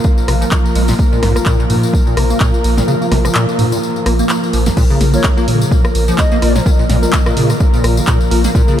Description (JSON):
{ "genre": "acid house", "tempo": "127 BPM", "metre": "4/4", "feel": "swing 56% on 16ths", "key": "unclear", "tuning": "A4 = 436 Hz", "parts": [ { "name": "warm analog pad", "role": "sustained chords", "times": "0.0-8.8 s", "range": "F3 to Bb4", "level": "-20 LUFS", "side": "right 1 dB", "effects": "chorus, sidechain pumping" }, { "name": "electronic kick drum", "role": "drums", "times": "0.0-8.7 s", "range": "none", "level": "-13 LUFS", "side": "equal", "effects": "overdrive" }, { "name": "tambourine", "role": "percussion", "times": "0.0-8.8 s", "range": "none", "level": "-30 LUFS", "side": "left 4 dB", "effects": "none" }, { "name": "granular cloud pad", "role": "texture", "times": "0.0-8.8 s", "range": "Bb3 to Bb5", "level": "-24 LUFS", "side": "equal", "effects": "built-in reverb, sidechain pumping" }, { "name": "acid bass, square", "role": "riff", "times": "0.3-8.8 s", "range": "Bb1 to Bb3", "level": "-19 LUFS", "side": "equal", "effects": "tube saturation, ensemble chorus, sidechain pumping, ping-pong delay" }, { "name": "round analog bass", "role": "bass", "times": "0.3-8.5 s", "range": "Bb1 to Bb2", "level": "-15 LUFS", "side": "equal", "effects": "sidechain pumping" }, { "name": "punchy analog drum machine", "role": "drums", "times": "0.3-8.5 s", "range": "crash cymbal, handclaps, hi-hat, rim click, snare drum", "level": "-20 LUFS", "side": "left 1 dB", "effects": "overdrive" }, { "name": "breathy hollow jazz flute", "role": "melody", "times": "5.1-6.7 s", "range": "Db5 to Eb5", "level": "-26 LUFS", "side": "equal", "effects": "diffuse ambient delay" }, { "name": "bell-like tine electric piano", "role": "stabs", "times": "5.1-8.4 s", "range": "Bb3 to Bb4", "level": "-22 LUFS", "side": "left 3 dB", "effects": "none" } ], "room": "moderate cathedral reverb, RT60 5.7 s", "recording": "dreamy mix soaked in reverb", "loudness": "-11 LUFS", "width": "side -10 dB against mid", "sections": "0.0-4.8 A section; 4.8-8.8 B section", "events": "kick drops out 2.9-4.8; drop 4.8-8.8", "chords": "0.0 Bb5" }